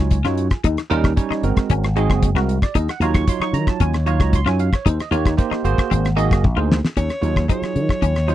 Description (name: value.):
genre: electric jazz fusion.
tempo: 114 BPM.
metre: 4/4.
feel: straight.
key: Eb dorian.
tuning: A4 = 440 Hz.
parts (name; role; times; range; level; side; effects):
bell-like tine electric piano; accompaniment; 0.0-8.3 s; Gb3 to Db6; -23 LUFS; right 8 dB; analog chorus.
slap bass with an envelope filter; bass; 0.0-8.3 s; Gb1 to Eb3; -19 LUFS; left 1 dB; none.
damped 70s drum kit; drums; 0.1-8.3 s; hi-hat, kick drum, rim click, snare drum, toms; -19 LUFS; left 1 dB; none.
clean electric guitar; stabs; 0.2-8.3 s; C4 to Gb4; -27 LUFS; left 16 dB; lush chorus.
mellow soprano saxophone; melody; 7.0-8.3 s; Db5; -25 LUFS; left 1 dB; none.
room: little or no reverb.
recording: dry, close 1970s-style studio recording.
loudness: -16 LUFS.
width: side -13 dB against mid.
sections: 0.0-7.0 A section; 7.0-8.3 B section.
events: drum fill 6.4-7.0.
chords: 0.0 Ebm9; 0.6 Eb7; 1.4 Ab9; 2.8 Ebm9; 4.9 Eb7; 5.6 Ab9; 6.4 Bb9sus4; 7.0 Ebm9.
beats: 0.11 | 0.64 1.17 1.70 2.22 | 2.75 3.28 3.81 4.33 | 4.86 5.38 5.91 6.44 | 6.96 7.49 8.02.